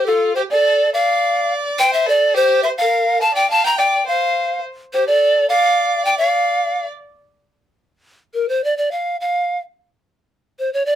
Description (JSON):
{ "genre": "andean folk, Andean ensemble", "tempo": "106 BPM", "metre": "2/4", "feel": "straight", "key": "D minor", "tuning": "A4 = 438 Hz", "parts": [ { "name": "breathy bright pan flute", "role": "melody", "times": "0.0-11.0 s", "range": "A4 to Bb5", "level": "-15 LUFS", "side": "equal", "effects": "none" }, { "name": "rich violin", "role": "second line", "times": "0.0-6.9 s", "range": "F4 to G5", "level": "-23 LUFS", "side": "right 1 dB", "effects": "none" } ], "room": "light reverb", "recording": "close, detailed microphones", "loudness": "-15 LUFS", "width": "side -11 dB against mid", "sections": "0.0-7.5 A section; 7.5-11.0 B section", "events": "none", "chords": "none", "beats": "0.07 | 0.64 1.21 | 1.78 2.36 | 2.93 3.50 | 4.07 4.63 | 5.20 5.77 | 6.34 6.90 | 7.47 8.04 | 8.61 9.17 | 9.74 10.30 | 10.87" }